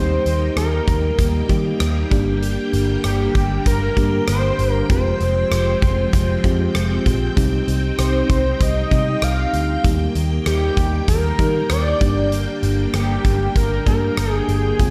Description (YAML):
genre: 1980s-style pop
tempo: 97 BPM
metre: 4/4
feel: straight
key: unclear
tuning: A4 = 441 Hz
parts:
  - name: fat analog lead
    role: melody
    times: 0.0-14.9 s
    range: G4 to F5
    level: -25 LUFS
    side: equal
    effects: analog delay
  - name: FM electric piano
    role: accompaniment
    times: 0.0-14.9 s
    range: G3 to G5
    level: -27 LUFS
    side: equal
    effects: chorus
  - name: string machine, violins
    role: sustained chords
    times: 0.0-14.9 s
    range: D3 to G5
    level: -29 LUFS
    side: equal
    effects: ensemble chorus
  - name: vintage muted picked electric bass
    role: bass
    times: 0.0-14.9 s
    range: F1 to Eb3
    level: -23 LUFS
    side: equal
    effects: none
  - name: huge arena drum kit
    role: drums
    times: 0.3-14.9 s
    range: hi-hat, kick drum, rim click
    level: -24 LUFS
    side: equal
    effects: none
room: moderate plate reverb, RT60 1.4 s, studio reverb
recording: dreamy mix soaked in reverb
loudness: -19 LUFS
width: mono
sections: 0.0-14.9 A section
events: none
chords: 0.0 Eb; 2.1 Gm; 4.9 Fmadd9; 7.4 Cm; 9.8 Eb; 12.0 Gm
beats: 0.57 1.19 1.80 | 2.42 3.04 3.66 4.28 | 4.90 5.52 6.13 6.75 | 7.37 7.99 8.61 9.23 | 9.85 10.46 11.08 11.70 | 12.32 12.94 13.56 14.18 | 14.79